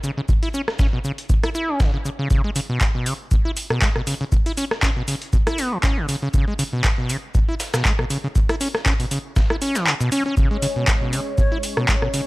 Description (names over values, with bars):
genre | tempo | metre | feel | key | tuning
acid house | 119 BPM | 4/4 | swing 55% on 16ths | C# minor pentatonic | A4 = 440 Hz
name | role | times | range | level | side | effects
acid bass, saw | riff | 0.0-12.2 s | B2 to E4 | -24 LUFS | equal | overdrive, sidechain pumping
dusty soul sampler-style drum kit | drums | 0.0-12.3 s | hi-hat, shaker, snare drum | -33 LUFS | equal | high-pass filter on perc, high-pass filter on hats, high-pass filter on snare, high-pass filter on room
electronic kick drum | drums | 0.3-12.0 s | none | -19 LUFS | equal | none
booming analog drum machine | drums | 0.7-12.2 s | handclaps, hi-hat, rim click | -24 LUFS | equal | none
lush unison pad | sustained chords | 10.4-12.3 s | G#3 to C#5 | -27 LUFS | left 1 dB | chorus, sidechain pumping
breathy concert flute | melody | 11.4-11.6 s | C#5 | -31 LUFS | equal | tape echo
room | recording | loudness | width
digital ambience | dry, gritty hardware recording | -18 LUFS | side -21 dB against mid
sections
0.0-12.3 A section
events
kick drops out 9.9-10.4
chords
0.0 C#5